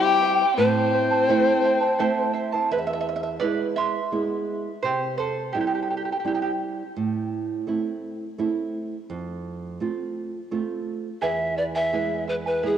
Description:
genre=andean folk, Andean ensemble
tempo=85 BPM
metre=3/4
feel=straight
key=unclear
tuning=A4 = 438 Hz
part: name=mellow polished pan flute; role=melody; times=0.0-2.3, 11.2-12.8 s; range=G#4 to G5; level=-23 LUFS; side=left 1 dB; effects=cassette tape
part: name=warm violin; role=second line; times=0.0-2.3 s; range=C4 to G4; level=-24 LUFS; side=left 7 dB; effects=none
part: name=charango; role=accompaniment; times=0.0-6.5, 11.2-12.8 s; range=E4 to C6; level=-27 LUFS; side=right 4 dB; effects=none
part: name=nylon-string guitar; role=accompaniment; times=0.0-12.8 s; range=E2 to F4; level=-27 LUFS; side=right 5 dB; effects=none
room=wet lush hall reverb, RT60 3.1 s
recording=home recording on cassette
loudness=-22 LUFS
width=side -9 dB against mid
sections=0.0-2.7 A section; 2.7-11.2 B section; 11.2-12.8 C section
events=charango solo 2.7-11.2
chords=0.0 C; 0.6 Am; 2.7 E; 4.8 C; 7.0 Am; 9.1 F; 11.2 E

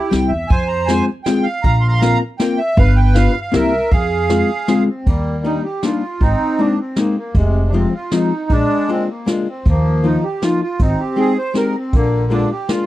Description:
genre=musette waltz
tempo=158 BPM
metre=3/4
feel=straight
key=F harmonic minor, Eb major from 5.1 s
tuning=A4 = 440 Hz
part: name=accordion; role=melody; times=0.0-12.9 s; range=C3 to C6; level=-19 LUFS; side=right 2 dB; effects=light tremolo tuning
part: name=archtop guitar, miked and amplified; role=accompaniment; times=0.1-12.9 s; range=F3 to Bb4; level=-17 LUFS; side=left 3 dB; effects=none
part: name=upright bass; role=bass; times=0.1-12.4 s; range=F1 to F2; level=-16 LUFS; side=equal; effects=none
part: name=vintage brush drum kit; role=drums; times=0.1-12.8 s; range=hi-hat, kick drum, ride cymbal, snare drum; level=-18 LUFS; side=equal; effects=none
room=small room ambience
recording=dry, close 1970s-style studio recording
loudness=-14 LUFS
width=side -15 dB against mid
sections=0.0-5.1 A section; 5.1-12.9 B section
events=none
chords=0.0 C; 0.5 Fm; 1.6 Bbsus2; 2.8 G7; 3.5 C7; 3.9 Fm; 5.1 Ebmaj7; 6.2 Abadd9; 7.3 Fm; 8.5 Bb7; 9.7 Ebsus2; 10.8 Abmaj7; 11.9 Bb7

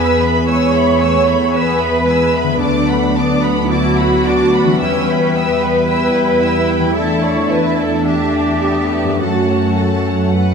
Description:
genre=cinematic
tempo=51-58 BPM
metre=4/4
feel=rubato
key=unclear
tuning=A4 = 441 Hz
part: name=muted symphonic violin section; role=melody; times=0.0-10.5 s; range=E5 to E6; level=-25 LUFS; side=left 2 dB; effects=none
part: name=muted symphonic violin section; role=second line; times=0.0-10.5 s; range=A4 to B5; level=-23 LUFS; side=left 2 dB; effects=none
part: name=muted symphonic viola section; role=accompaniment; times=0.0-10.5 s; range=G#3 to E4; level=-23 LUFS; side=right 3 dB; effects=none
part: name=mellow French horn section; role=sustained chords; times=0.0-10.5 s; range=F#3 to G#4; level=-19 LUFS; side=left 2 dB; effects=none
part: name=concert harp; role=arpeggios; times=0.0-10.5 s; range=F#2 to D5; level=-23 LUFS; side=left 9 dB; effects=none
part: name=muted symphonic cello section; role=bass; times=0.0-10.4 s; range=D4 to C#5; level=-17 LUFS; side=right 2 dB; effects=none
part: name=muted symphonic double bass section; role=bass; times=0.0-10.5 s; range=D2 to F#2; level=-20 LUFS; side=right 3 dB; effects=none
room=wet scoring stage reverb, RT60 1.8 s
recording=none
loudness=-12 LUFS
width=side -6 dB against mid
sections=0.0-10.5 A section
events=none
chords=0.0 E; 2.6 D6; 4.8 Em; 7.0 Asus4/E; 9.2 F#m

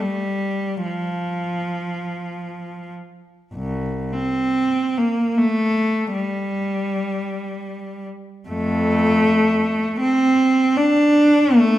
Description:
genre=classical, free, expressive piece for unaccompanied cello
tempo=free time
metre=none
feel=none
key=unclear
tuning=A4 = 440 Hz
part: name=rich cello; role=solo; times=0.0-11.8 s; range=C2 to D4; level=-18 LUFS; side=equal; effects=none
room=wet recital hall reverb, RT60 1.5 s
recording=none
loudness=-17 LUFS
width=side -14 dB against mid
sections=0.0-11.8 A section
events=none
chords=none

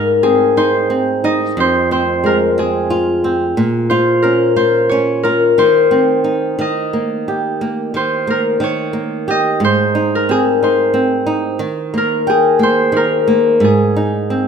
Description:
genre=children's music, lullaby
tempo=60 BPM (dotted quarters)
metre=6/8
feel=rubato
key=Ab major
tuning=A4 = 441 Hz
part: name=concert harp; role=melody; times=0.0-14.5 s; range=Ab4 to Eb5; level=-15 LUFS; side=left 2 dB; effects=none
part: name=flamenco guitar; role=accompaniment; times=0.0-14.5 s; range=F2 to G5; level=-16 LUFS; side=right 2 dB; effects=none
room=moderate recital hall reverb, RT60 1.2 s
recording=minimal, uncompressed stereo recording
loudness=-12 LUFS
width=side -7 dB against mid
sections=0.0-14.5 A section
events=none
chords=0.0 Ab; 1.6 Fm; 3.6 Bbm; 5.6 Cm/Eb; 6.6 Eb; 9.6 Ab; 11.6 Eb; 13.6 Ab

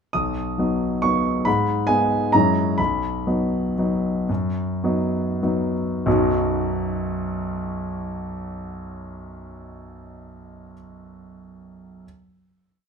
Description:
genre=classical, piano waltz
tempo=92-143 BPM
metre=3/4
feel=rubato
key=B major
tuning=A4 = 440 Hz
part: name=warm grand piano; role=solo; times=0.1-12.1 s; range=B1 to D#6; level=-21 LUFS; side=equal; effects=none
room=light reverb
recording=minimal, uncompressed stereo recording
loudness=-20 LUFS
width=side -6 dB against mid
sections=0.1-6.0 A section; 6.0-9.9 final chord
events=slowing down 2.1-6.0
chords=0.1 B; 1.5 G#m; 2.3 F#9; 2.8 B

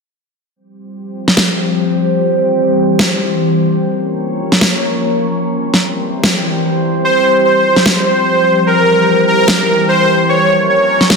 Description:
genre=heavy wobble dubstep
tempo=148 BPM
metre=4/4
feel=swing 54% on 16ths, half-time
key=unclear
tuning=A4 = 440 Hz
part: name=evolving wavetable pad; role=sustained chords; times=0.9-11.2 s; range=E3 to Db5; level=-14 LUFS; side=equal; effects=phaser, built-in reverb
part: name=electronic snare drum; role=drums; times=1.3-11.2 s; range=none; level=-14 LUFS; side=equal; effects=none
part: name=soft supersaw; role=melody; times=7.0-11.2 s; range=Bb4 to Db5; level=-11 LUFS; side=equal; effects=dub echo
room=wet lush hall reverb, RT60 2.4 s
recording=dense, heavily limited modern master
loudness=-10 LUFS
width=side -4 dB against mid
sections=0.6-11.2 A section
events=filter sweep on ambient pad 0.6-11.2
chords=0.6 Fsus2; 2.2 C; 3.8 Bbm; 5.4 C; 7.0 Fsus2; 8.7 C; 10.3 Bbm

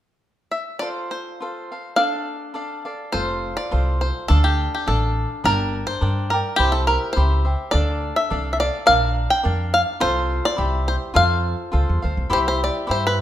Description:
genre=mexican folk, mariachi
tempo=104 BPM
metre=2/4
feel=straight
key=F major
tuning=A4 = 440 Hz
part: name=bluegrass banjo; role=melody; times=0.5-13.2 s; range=G4 to G5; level=-21 LUFS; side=equal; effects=none
part: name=cavaquinho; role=accompaniment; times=0.8-13.2 s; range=D4 to G5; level=-26 LUFS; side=left 1 dB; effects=none
part: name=upright bass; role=bass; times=3.1-13.2 s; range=F1 to G2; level=-21 LUFS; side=equal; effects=none
room=light reverb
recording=minimal, uncompressed stereo recording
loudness=-18 LUFS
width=side -12 dB against mid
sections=0.8-3.1 A section; 3.1-12.3 B section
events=none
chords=0.0 N.C.; 0.8 F; 2.0 Dm; 3.1 F; 4.3 Dm; 5.4 Gm; 6.6 C; 7.7 Dm; 8.9 Bb; 10.0 F/C; 10.6 C; 11.2 F; 12.3 C

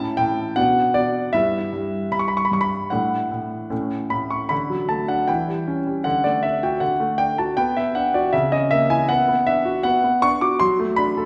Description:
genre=classical-period piano sonatina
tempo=79 BPM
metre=2/4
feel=straight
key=D major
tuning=A4 = 440 Hz
part: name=clear grand piano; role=solo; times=0.0-11.3 s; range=G2 to D6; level=-21 LUFS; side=equal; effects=none
room=wet recital hall reverb, RT60 1.5 s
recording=heard from further back in the room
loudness=-21 LUFS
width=mono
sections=0.0-4.5 A section; 4.5-11.3 B section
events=none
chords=0.0 A; 0.6 Bm; 1.3 Em/G; 2.9 D/A; 3.7 A; 4.5 D; 5.3 C#dim/E; 6.0 D; 7.6 Bm; 8.3 A#dim/C#; 9.1 Bm; 10.6 D/F#

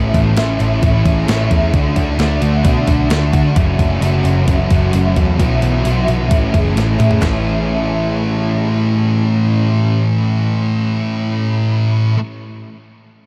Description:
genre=rock, shoegaze and dream pop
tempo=131 BPM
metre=4/4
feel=straight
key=A major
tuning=A4 = 440 Hz
part: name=picked twelve-string acoustic guitar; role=arpeggios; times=0.0-12.2 s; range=E3 to G#4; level=-27 LUFS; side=equal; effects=ensemble chorus, tape echo
part: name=crunchy overdriven guitar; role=riff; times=0.0-12.2 s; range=A2 to F#4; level=-21 LUFS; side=equal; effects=reverse reverb
part: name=thick fuzz guitar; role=riff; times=0.0-12.2 s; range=F#2 to D4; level=-21 LUFS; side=equal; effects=distortion, ensemble chorus
part: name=vintage muted picked electric bass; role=bass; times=0.0-12.1 s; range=F#1 to D3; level=-19 LUFS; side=equal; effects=none
part: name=crisp 8-bit digital drum machine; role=drums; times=0.1-7.3 s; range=handclaps, hi-hat, kick drum, snare drum, toms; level=-19 LUFS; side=equal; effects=none
room=light reverb, digital ambience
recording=none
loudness=-15 LUFS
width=mono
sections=0.0-7.2 A section; 7.2-10.9 B section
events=drum fill 6.8-7.2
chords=0.0 Amaj7; 1.7 D; 3.6 F#m7; 5.4 Bsus4; 6.3 Amaj7

